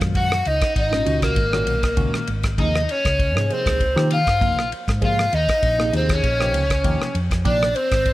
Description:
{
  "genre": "electric jazz fusion",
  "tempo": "99 BPM",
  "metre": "4/4",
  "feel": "swing 53% on 16ths",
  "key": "unclear",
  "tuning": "A4 = 440 Hz",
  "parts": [
    { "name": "tine electric piano", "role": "accompaniment", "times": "0.0-8.0 s", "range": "Bb2 to Bb4", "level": "-28 LUFS", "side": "right 1 dB", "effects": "overdrive, fast stereo tremolo, phaser" },
    { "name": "hollow-body short-scale fingered electric bass", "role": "bass", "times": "0.0-8.1 s", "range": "Ab1 to Eb3", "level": "-23 LUFS", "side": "equal", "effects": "none" },
    { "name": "damped 70s drum kit", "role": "drums", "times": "0.0-8.1 s", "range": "kick drum, ride cymbal, rim click", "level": "-24 LUFS", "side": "equal", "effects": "none" },
    { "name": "breathy mellow silver concert flute", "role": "melody", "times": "0.2-8.1 s", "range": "Bb4 to Gb5", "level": "-22 LUFS", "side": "equal", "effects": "none" },
    { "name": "crunchy overdriven guitar", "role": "second line", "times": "0.2-8.1 s", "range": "Bb3 to Gb4", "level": "-27 LUFS", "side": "left 1 dB", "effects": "none" }
  ],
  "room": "light reverb",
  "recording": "none",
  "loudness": "-17 LUFS",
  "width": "side -16 dB against mid",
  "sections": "0.0-8.1 A section",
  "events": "none",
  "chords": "0.0 Dbsus4; 2.6 Eb13sus4; 7.5 Bb13sus4"
}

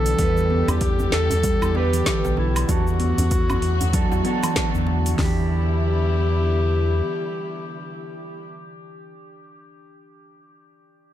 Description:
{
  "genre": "organic downtempo",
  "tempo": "96 BPM",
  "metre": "4/4",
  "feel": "swing 59% on 16ths",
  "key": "E minor",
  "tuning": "A4 = 440 Hz",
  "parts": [
    { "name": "clear clarinet", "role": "melody", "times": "0.0-8.4 s", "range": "E4 to A4", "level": "-27 LUFS", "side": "left 2 dB", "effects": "dub echo" },
    { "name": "mellow electric guitar", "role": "accompaniment", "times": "0.0-9.2 s", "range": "E3 to B4", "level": "-31 LUFS", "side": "right 4 dB", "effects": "sidechain pumping, dub echo" },
    { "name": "dark studio string section", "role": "sustained chords", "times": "0.0-8.4 s", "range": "D3 to G4", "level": "-32 LUFS", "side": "left 3 dB", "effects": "sidechain pumping" },
    { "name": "round analog bass", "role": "bass", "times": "0.0-7.0 s", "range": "B1 to E2", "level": "-22 LUFS", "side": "equal", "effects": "sidechain pumping" },
    { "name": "djembe", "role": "percussion", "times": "0.0-5.2 s", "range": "none", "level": "-32 LUFS", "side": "right 1 dB", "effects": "none" },
    { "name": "quartz singing bowl", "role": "texture", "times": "0.0-5.2 s", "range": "D4 to D5", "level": "-47 LUFS", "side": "right 1 dB", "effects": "none" },
    { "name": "afro-pop drum kit", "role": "drums", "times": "0.1-5.2 s", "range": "hi-hat, shaker, snare drum, woodblock", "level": "-28 LUFS", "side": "equal", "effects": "overdrive, small room ambience" },
    { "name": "steel tongue drum", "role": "arpeggios", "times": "0.2-5.5 s", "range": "D3 to E4", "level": "-28 LUFS", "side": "right 3 dB", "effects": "dub echo" },
    { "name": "deep house drum kit", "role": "drums", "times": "0.2-5.4 s", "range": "hi-hat, kick drum, snare drum", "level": "-25 LUFS", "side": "equal", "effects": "overdrive, small room ambience" }
  ],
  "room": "light reverb, studio reverb",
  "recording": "echo-heavy mix",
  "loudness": "-18 LUFS",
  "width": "side -12 dB against mid",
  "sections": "0.0-5.2 A section; 5.2-7.7 B section",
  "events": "none",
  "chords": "0.0 Em7; 2.7 D/E; 5.2 Em7"
}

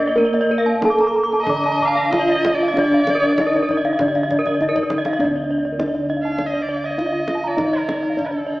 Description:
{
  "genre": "Balinese gamelan",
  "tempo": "90-101 BPM",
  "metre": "4/4",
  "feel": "straight",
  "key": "D pelog",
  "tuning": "A4 = 435 Hz",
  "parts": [
    { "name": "gamelan-type bronze metallophone", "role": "melody", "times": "0.0-8.6 s", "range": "Bb3 to D5", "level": "-22 LUFS", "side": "right 1 dB", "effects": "none" },
    { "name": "rich erhu", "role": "second line", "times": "0.0-8.6 s", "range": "A4 to F5", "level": "-25 LUFS", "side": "right 1 dB", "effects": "none" },
    { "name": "gamelan-type bronze metallophone", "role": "accompaniment", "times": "0.0-8.6 s", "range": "D3 to D4", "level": "-33 LUFS", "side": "left 1 dB", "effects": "none" },
    { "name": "gamelan-type bronze metallophone", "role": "arpeggios", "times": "0.0-8.6 s", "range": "Bb4 to D6", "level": "-22 LUFS", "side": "left 2 dB", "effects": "none" },
    { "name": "gamelan-type bossed gongs", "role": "bass", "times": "0.0-8.6 s", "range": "D2 to Bb4", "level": "-24 LUFS", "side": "equal", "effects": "none" },
    { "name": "gamelan-type bronze metallophone", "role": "arpeggios", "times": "0.1-8.5 s", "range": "Bb4 to D6", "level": "-24 LUFS", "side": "right 2 dB", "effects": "none" },
    { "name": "kendang", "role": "percussion", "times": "0.3-8.4 s", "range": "none", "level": "-32 LUFS", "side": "equal", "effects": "none" }
  ],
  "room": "moderate concert hall reverb, RT60 2.0 s",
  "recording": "small speaker sound",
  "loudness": "-16 LUFS",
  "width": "side -18 dB against mid",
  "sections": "0.0-5.2 A section; 5.2-8.6 B section",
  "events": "drum fill 4.5-5.2",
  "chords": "none"
}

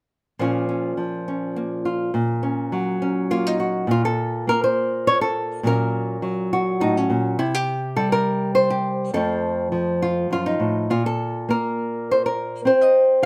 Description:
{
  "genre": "folk, solo fingerstyle acoustic guitar",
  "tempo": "103 BPM",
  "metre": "3/4",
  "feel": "straight",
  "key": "Bb harmonic minor",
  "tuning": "A4 = 440 Hz",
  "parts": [
    { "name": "nylon-string guitar", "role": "solo", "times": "0.4-13.3 s", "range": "F2 to Eb5", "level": "-22 LUFS", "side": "equal", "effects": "none" }
  ],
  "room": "light reverb",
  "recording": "none",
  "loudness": "-22 LUFS",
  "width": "mono",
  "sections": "0.4-3.9 A section; 3.9-13.3 B section",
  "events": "none",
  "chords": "0.4 Bbm; 2.1 Gb/Bb; 3.9 N.C.; 5.6 Gb/Bb; 7.4 C5; 9.1 F; 10.9 N.C.; 12.7 C5"
}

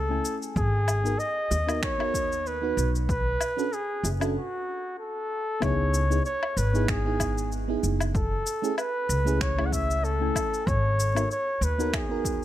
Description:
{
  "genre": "sunset chillout",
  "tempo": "95 BPM",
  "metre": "4/4",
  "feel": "swing 55% on 16ths",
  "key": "C# minor",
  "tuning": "A4 = 436 Hz",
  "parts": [
    { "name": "mellow flugelhorn", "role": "melody", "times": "0.0-12.4 s", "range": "F#4 to F#5", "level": "-29 LUFS", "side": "equal", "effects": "tape echo" },
    { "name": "mellow FM electric piano", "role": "accompaniment", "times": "0.0-12.4 s", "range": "A3 to G#5", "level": "-32 LUFS", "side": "moving between left 5 dB and right 8 dB", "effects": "chorus, auto-pan, tape echo" },
    { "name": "upright bass", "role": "bass", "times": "0.0-12.4 s", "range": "F#1 to D#2", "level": "-27 LUFS", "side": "equal", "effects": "none" },
    { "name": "electronic shaker, woodblock and finger snaps", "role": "drums", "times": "0.2-12.4 s", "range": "none", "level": "-33 LUFS", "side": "left 2 dB", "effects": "overdrive" },
    { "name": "electronic kick drum", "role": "drums", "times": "0.6-12.4 s", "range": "none", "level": "-31 LUFS", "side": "equal", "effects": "overdrive" },
    { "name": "bongos", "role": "percussion", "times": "1.5-4.2 s", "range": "none", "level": "-37 LUFS", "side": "right 4 dB", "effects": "none" }
  ],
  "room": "light reverb, small room ambience",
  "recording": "none",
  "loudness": "-24 LUFS",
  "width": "side -13 dB against mid",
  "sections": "0.0-5.6 A section; 5.6-12.4 B section",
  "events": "break 4.4-5.6",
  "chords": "0.0 F#m9 (rootless); 0.6 G#m9; 3.1 Bm9; 5.6 C#m9; 8.1 F#m9 (rootless); 10.7 G#m9"
}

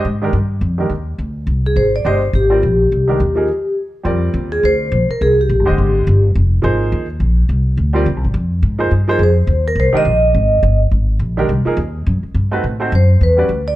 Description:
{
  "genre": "modal jazz",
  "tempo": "210 BPM",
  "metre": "4/4",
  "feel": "swing 59% on 8ths",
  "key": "F dorian from 4.1 s",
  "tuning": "A4 = 440 Hz",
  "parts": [
    { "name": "clear baby grand piano", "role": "accompaniment", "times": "0.0-13.5 s", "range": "D3 to Eb5", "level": "-20 LUFS", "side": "right 2 dB", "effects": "none" },
    { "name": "upright bass", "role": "bass", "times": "0.0-13.8 s", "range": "F1 to A2", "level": "-15 LUFS", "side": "equal", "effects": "none" },
    { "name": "vibraphone with medium mallets", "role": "melody", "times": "1.7-6.2, 9.1-10.8, 13.0-13.7 s", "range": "G4 to Eb5", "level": "-15 LUFS", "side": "equal", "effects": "none" }
  ],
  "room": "little or no reverb",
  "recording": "dark, warm production",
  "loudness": "-13 LUFS",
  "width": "side -15 dB against mid",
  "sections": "0.0-4.1 A section; 4.1-13.2 B section",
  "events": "break 3.5-4.1",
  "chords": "0.0 Fm11; 4.1 Fm9; 12.1 B7b9 (rootless); 13.2 Em9"
}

